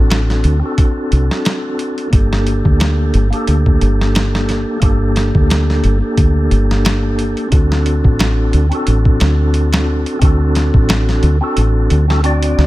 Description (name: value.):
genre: trip hop.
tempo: 89 BPM.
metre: 4/4.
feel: swing 55% on 16ths.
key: G harmonic minor.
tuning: A4 = 441 Hz.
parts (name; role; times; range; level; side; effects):
percussive tonewheel organ; accompaniment; 0.0-12.7 s; Bb3 to D5; -18 LUFS; equal; fast rotary speaker, tremolo, vintage 12-bit sampler grit, tape echo.
deep dub fingered electric bass; bass; 0.0-12.7 s; G1 to D2; -14 LUFS; equal; none.
boom bap sampler-style drum kit; drums; 0.1-12.7 s; hi-hat, kick drum, snare drum; -15 LUFS; equal; none.
room: little or no reverb.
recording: none.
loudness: -12 LUFS.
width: side -17 dB against mid.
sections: 0.0-12.7 A section.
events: kick drops out 11.6-12.7.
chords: 0.0 D7; 2.1 Gmadd9; 7.5 D7.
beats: 0.11 0.78 1.46 | 2.13 2.81 3.48 4.15 | 4.83 5.50 6.18 6.85 | 7.52 8.20 8.87 9.55 | 10.22 10.89 11.57 12.24.